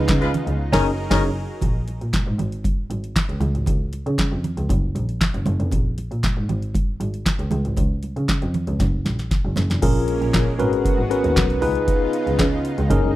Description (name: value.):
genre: early-eighties boogie funk.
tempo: 117 BPM.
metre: 4/4.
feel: straight.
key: G# dorian.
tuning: A4 = 440 Hz.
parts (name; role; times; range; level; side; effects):
tine electric piano; accompaniment; 0.0-1.3, 9.8-13.1 s; C#4 to C#5; -21 LUFS; left 2 dB; medium stereo tremolo.
lush unison pad; sustained chords; 0.0-1.6, 9.8-13.2 s; C#3 to A#4; -28 LUFS; equal; chorus.
clear double bass; bass; 0.0-13.1 s; E#1 to C#3; -23 LUFS; equal; none.
booming analog drum machine; drums; 0.1-13.1 s; crash cymbal, handclaps, hi-hat, kick drum, snare drum; -21 LUFS; equal; none.
congas; percussion; 0.1-9.7 s; none; -30 LUFS; right 3 dB; none.
warm horn section; second line; 0.2-1.2 s; D#3 to B4; -25 LUFS; left 1 dB; none.
room: studio reverb.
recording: dry, close 1970s-style studio recording.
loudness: -19 LUFS.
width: side -16 dB against mid.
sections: 0.0-1.6 A section; 1.6-9.8 B section; 9.8-13.2 A section.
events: band accent 0.0-1.6; drum fill 8.8-9.8.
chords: 0.0 C#9; 0.6 F#69; 1.6 G#sus2/A#; 2.4 N.C.; 4.7 F#; 5.7 G#sus2/A#; 6.5 N.C.; 8.8 F#; 9.8 A#m7; 10.6 G#m11; 11.6 C#9.